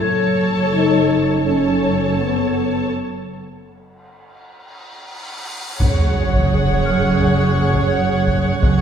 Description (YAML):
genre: cinematic, suspense film score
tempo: 85 BPM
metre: 4/4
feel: straight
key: unclear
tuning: A4 = 442 Hz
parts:
  - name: warm studio violin section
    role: melody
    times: 0.0-8.8 s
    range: F#5 to A5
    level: -27 LUFS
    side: left 3 dB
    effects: none
  - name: warm symphonic viola section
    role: accompaniment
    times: 0.0-8.8 s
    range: G#4 to C#5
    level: -25 LUFS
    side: right 1 dB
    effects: none
  - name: mellow French horn section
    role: sustained chords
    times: 0.0-8.8 s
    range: B3 to G#4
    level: -22 LUFS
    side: left 2 dB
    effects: none
  - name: rich studio double bass section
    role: bass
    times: 0.0-8.8 s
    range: F#1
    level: -23 LUFS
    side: equal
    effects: none
  - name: warm studio cello section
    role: bass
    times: 0.0-8.8 s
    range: F#2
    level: -22 LUFS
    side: right 3 dB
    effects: none
  - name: large celesta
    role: texture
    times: 0.0-8.8 s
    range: A4 to G#6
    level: -27 LUFS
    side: left 6 dB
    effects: none
  - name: cymbal swell and sub drop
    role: sound effects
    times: 5.1-8.6 s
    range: none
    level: -23 LUFS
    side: equal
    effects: none
  - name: warm studio violin section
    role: second line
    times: 5.8-8.8 s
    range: C#5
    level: -23 LUFS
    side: right 4 dB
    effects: none
  - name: taiko ensemble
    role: drums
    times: 5.8-8.8 s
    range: none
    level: -21 LUFS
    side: equal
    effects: none
  - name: warm studio violin section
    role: texture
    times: 5.8-8.8 s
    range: F#6 to G#6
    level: -32 LUFS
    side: left 2 dB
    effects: none
room: wet scoring stage reverb, RT60 2.2 s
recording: heard from further back in the room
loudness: -15 LUFS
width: side -8 dB against mid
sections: 0.0-5.8 A section; 5.8-8.8 B section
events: break 2.9-5.8; cymbal swell 5.1-5.8; impact 5.8-8.6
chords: 0.0 F#m; 5.8 F#sus2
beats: | 0.04 0.74 1.45 2.17 | 2.90 3.63 4.36 5.08 | 5.80 6.50 7.21 7.92 | 8.62